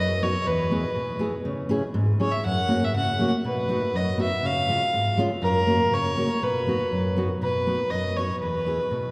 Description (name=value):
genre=alpine folk, alpine dance band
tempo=121 BPM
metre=2/4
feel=straight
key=B major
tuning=A4 = 440 Hz
part: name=warm fiddle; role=melody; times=0.0-9.1 s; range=A#4 to F#5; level=-28 LUFS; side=equal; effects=none
part: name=fingerpicked steel-string acoustic guitar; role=accompaniment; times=0.0-9.1 s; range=E2 to G#4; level=-27 LUFS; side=equal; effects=none
room=wet cathedral reverb, RT60 5.6 s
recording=recorded in a church or concert hall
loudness=-25 LUFS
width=mono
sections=0.0-7.4 A section; 7.4-9.1 A section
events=none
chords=0.5 E; 1.5 C#m; 2.4 F#; 3.4 B; 4.4 C#; 5.4 F#; 6.4 B; 8.4 E